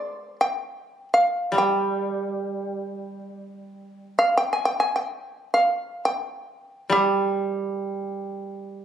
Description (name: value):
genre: japanese traditional, Japanese chamber music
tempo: free time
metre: none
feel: none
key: unclear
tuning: A4 = 442 Hz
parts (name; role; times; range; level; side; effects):
- shamisen; melody; 0.0-8.8 s; G4 to Ab5; -22 LUFS; equal; none
- koto; accompaniment; 0.0-8.8 s; G3; -25 LUFS; right 2 dB; none
room: moderate recital hall reverb, RT60 1.4 s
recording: recorded on a phone in the room, club reverb, compression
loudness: -22 LUFS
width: side -9 dB against mid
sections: 0.0-8.8 A section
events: none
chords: none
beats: free time